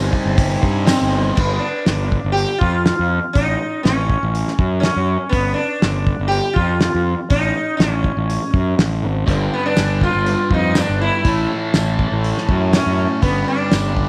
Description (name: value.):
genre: psychedelic rock.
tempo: 121 BPM.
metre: 4/4.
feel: straight.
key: unclear.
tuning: A4 = 441 Hz.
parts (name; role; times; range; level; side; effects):
overdriven combo organ; sustained chords; 0.0-1.3, 9.3-14.1 s; D4 to B5; -30 LUFS; equal; none.
fuzz guitar; riff; 0.0-1.4, 9.3-14.1 s; G2 to Eb4; -26 LUFS; equal; distortion, phaser.
fuzz fingered electric bass; bass; 0.0-14.0 s; G1 to G2; -22 LUFS; equal; overdrive.
cloth-damped thuddy drum kit; drums; 0.1-14.1 s; crash cymbal, hi-hat, kick drum, snare drum; -21 LUFS; equal; none.
sitar; melody; 0.9-14.1 s; B3 to G4; -23 LUFS; equal; slapback echo.
tambourine; percussion; 0.9-1.0, 9.8-13.8 s; none; -36 LUFS; equal; none.
room: light reverb.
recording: none.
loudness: -18 LUFS.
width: mono.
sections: 0.0-1.4 A section; 1.4-14.1 B section.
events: none.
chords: 0.0 Ab; 1.4 G5; 3.3 A; 5.3 G5; 7.3 A; 9.3 G; 11.3 A; 13.2 G.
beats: 0.38 0.87 | 1.37 1.86 2.36 2.85 | 3.35 3.84 4.34 4.83 | 5.33 5.82 6.32 6.81 | 7.30 7.80 8.29 8.79 | 9.28 9.78 10.27 10.76 | 11.26 11.75 12.24 12.74 | 13.23 13.72.